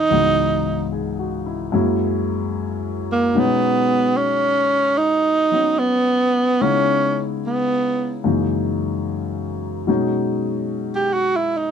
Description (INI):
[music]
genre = jazz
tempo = 74 BPM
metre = 4/4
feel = swing 67% on 8ths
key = B major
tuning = A4 = 443 Hz
[part]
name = warm tenor saxophone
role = melody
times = 0.0-11.7 s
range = A#3 to G4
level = -17 LUFS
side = right 2 dB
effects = none
[part]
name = warm grand piano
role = accompaniment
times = 0.0-11.7 s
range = C#2 to G#4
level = -22 LUFS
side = left 4 dB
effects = none
[sound]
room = light reverb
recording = close, detailed microphones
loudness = -17 LUFS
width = side -7 dB against mid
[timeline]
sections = 0.0-9.9 A section; 9.9-11.7 B section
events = tenor saxophone solo 9.9-11.7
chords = 0.1 C#m11; 1.7 F#7; 3.4 B69; 6.6 C#m7; 8.2 F#13; 9.9 B69